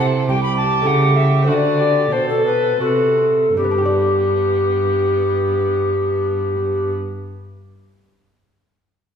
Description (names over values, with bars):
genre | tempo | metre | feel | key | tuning
classical, baroque-style sonata movement with continuo | 77-107 BPM | 3/4 | rubato | G major | A4 = 440 Hz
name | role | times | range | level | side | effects
alto recorder | melody | 0.0-6.9 s | G4 to B5 | -18 LUFS | left 2 dB | none
dark violin | second line | 0.0-6.9 s | B3 to A4 | -24 LUFS | right 6 dB | none
lute | accompaniment | 0.0-7.2 s | B2 to D5 | -24 LUFS | equal | none
rich cello | bass | 0.0-6.9 s | C2 to D3 | -21 LUFS | right 1 dB | none
room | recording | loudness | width
wet recital hall reverb, RT60 1.7 s | heard from further back in the room | -15 LUFS | side -7 dB against mid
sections
0.0-3.6 A section; 3.6-8.2 B section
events
slowing down 0.0-3.6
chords
0.0 Am7/C; 0.9 A7/C#; 1.5 D7; 3.6 G